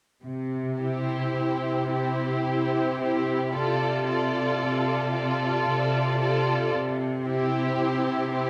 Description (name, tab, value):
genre	classical, slow romantic movement for string orchestra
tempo	56 BPM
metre	3/4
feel	rubato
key	C major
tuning	A4 = 438 Hz
part	clear symphonic cello section	bass	0.2-8.5 s	C3	-30 LUFS	equal	none
part	warm symphonic violin section	melody	0.8-8.5 s	C5 to D5	-35 LUFS	equal	none
part	warm symphonic violin section	second line	0.8-8.5 s	G4 to A4	-33 LUFS	equal	none
part	clear symphonic viola section	accompaniment	0.8-8.5 s	E4 to F4	-32 LUFS	equal	none
room	wet recital hall reverb, RT60 1.5 s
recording	heard from further back in the room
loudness	-26 LUFS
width	mono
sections	0.2-8.5 A section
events	none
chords	0.2 C; 3.5 Dm7/C; 6.7 C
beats	| 0.24 1.36 2.46 | 3.54 4.61 5.67 | 6.74 7.80